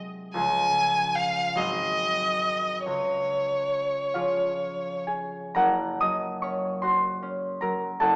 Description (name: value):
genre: classical, romantic duo for violin and harp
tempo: 40-51 BPM (dotted quarters)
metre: 6/8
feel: rubato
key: unclear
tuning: A4 = 443 Hz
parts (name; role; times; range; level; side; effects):
- concert harp; accompaniment; 0.0-8.2 s; Gb1 to Eb6; -27 LUFS; equal; none
- clear violin; melody; 0.3-5.0 s; Db5 to Ab5; -24 LUFS; equal; none
room: wet recital hall reverb, RT60 1.7 s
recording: small speaker sound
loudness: -23 LUFS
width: side -39 dB against mid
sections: 0.0-5.6 A section; 5.6-8.2 B section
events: none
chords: 0.4 Db; 1.6 Ab7; 2.9 Db; 5.6 Gb